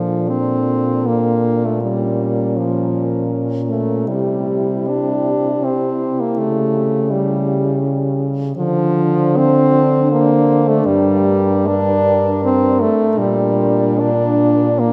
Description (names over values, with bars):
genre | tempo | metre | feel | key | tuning
classical, lyrical piece for horn quartet | 79 BPM | 3/4 | uneven beats, rubato | unclear | A4 = 440 Hz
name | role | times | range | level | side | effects
warm French horn | melody | 0.0-14.9 s | G4 to C5 | -27 LUFS | equal | none
mellow French horn | second line | 0.0-14.9 s | Db4 to E4 | -25 LUFS | equal | none
warm French horn | accompaniment | 0.0-14.9 s | F3 to D4 | -19 LUFS | equal | none
warm French horn | bass | 0.0-14.9 s | G2 to D3 | -22 LUFS | equal | none
room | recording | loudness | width
wet cathedral reverb, RT60 4.4 s | none | -16 LUFS | mono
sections
0.0-14.9 A section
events
none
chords
0.0 Bbmaj7; 1.8 Bbm; 4.1 C; 6.4 A7/C#; 8.6 Dm7; 10.9 Gm; 13.2 Gm/Bb